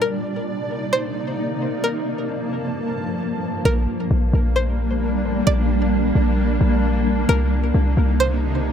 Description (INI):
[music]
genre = hip hop, atmospheric cloud-rap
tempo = 132 BPM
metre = 4/4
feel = half-time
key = Bb major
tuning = A4 = 440 Hz
[part]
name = string-like resonator pluck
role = melody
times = 0.0-8.7 s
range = Bb4 to D5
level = -24 LUFS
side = equal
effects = chorus, dub echo
[part]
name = granular cloud pad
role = sustained chords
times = 0.0-8.7 s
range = G2 to A5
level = -22 LUFS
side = equal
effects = built-in reverb
[part]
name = warm 808-style bass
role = bass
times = 3.7-8.7 s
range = Bb1 to C2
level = -19 LUFS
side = equal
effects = none
[sound]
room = light reverb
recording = echo-heavy mix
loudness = -18 LUFS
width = side -8 dB against mid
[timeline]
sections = 0.0-3.7 A section; 3.7-8.7 B section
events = none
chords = 0.0 Cm9; 1.8 Gm9; 3.7 Bb69; 7.3 Cm9